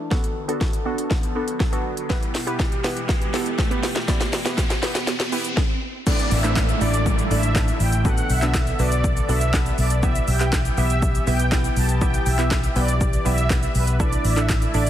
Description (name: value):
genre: dance-pop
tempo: 121 BPM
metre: 4/4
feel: straight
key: E minor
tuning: A4 = 441 Hz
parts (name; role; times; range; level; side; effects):
- glassy wavetable pluck; accompaniment; 0.0-14.9 s; A3 to G5; -28 LUFS; right 2 dB; chorus, sidechain pumping, low-pass filter
- chorused pulse-width pad; sustained chords; 0.0-14.9 s; B2 to A4; -31 LUFS; left 1 dB; sidechain pumping, low-pass filter
- riser and downlifter; sound effects; 0.3-10.0 s; none; -30 LUFS; right 1 dB; none
- house drum kit; drums; 0.1-14.9 s; crash cymbal, handclaps, hi-hat, kick drum, shaker, snare drum; -22 LUFS; equal; none
- supersaw pad; melody; 6.1-14.9 s; B4 to A5; -26 LUFS; right 1 dB; sidechain pumping
- vintage muted fingered electric bass; bass; 6.3-14.9 s; A1 to B1; -21 LUFS; equal; sidechain pumping
room: little or no reverb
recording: dense, heavily limited modern master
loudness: -19 LUFS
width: side -11 dB against mid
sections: 0.0-6.1 A section; 6.1-14.9 B section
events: build-up 0.0-6.1; drum fill 0.0-5.6; filter sweep 0.0-6.1; riser 0.3-6.1; drop 6.1-14.9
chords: 0.1 Bm7; 2.1 Em/B; 6.1 Asus4; 8.0 Bm7; 10.0 Em/B; 14.0 Asus4